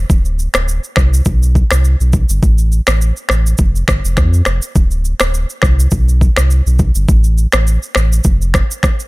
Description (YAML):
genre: afrobeats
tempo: 103 BPM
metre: 4/4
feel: swing 55% on 16ths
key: unclear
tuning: A4 = 440 Hz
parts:
  - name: sub bass with octave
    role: bass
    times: 0.0-8.6 s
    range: D1 to F2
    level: -12 LUFS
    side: equal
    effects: none
  - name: afro-pop drum kit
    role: drums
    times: 0.1-9.1 s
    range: finger snaps, kick drum, rim click, shaker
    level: -14 LUFS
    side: equal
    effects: overdrive
room: digital ambience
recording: none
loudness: -11 LUFS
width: side -22 dB against mid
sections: 0.0-4.8 A section; 4.8-9.1 B section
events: none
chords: none